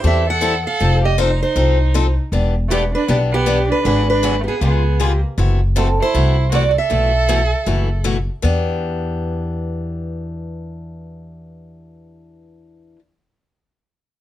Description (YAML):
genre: acoustic string swing (jazz manouche)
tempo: 157 BPM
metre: 4/4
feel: swing 62% on 8ths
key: E minor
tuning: A4 = 440 Hz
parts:
  - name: picked steel-string acoustic guitar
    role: melody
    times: 0.0-8.0 s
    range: F#4 to F#5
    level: -20 LUFS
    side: right 3 dB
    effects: none
  - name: warm violin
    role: second line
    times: 0.0-8.0 s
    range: A3 to A4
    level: -23 LUFS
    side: right 4 dB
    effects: none
  - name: picked steel-string acoustic guitar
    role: accompaniment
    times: 0.0-13.0 s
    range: B2 to A4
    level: -22 LUFS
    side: left 5 dB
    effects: none
  - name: upright bass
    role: bass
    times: 0.0-13.0 s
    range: E1 to E2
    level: -18 LUFS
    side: equal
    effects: none
room: little or no reverb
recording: close, detailed microphones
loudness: -15 LUFS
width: side -13 dB against mid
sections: 0.0-5.4 A section; 5.4-8.4 B section; 8.4-11.5 C section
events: none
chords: 0.0 Am7; 0.8 F7; 2.3 Em7; 3.9 G#m7b5; 4.6 C#7; 5.4 F#m7b5; 6.9 B7sus4; 8.4 Em7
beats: 0.04 0.42 | 0.81 1.19 1.57 1.95 | 2.33 2.71 3.09 3.47 | 3.85 4.23 4.62 5.00 | 5.38 5.76 6.14 6.52 | 6.91 7.29 7.67 8.05 | 8.43 8.81 9.20 9.58 | 9.96 10.35 10.73 11.11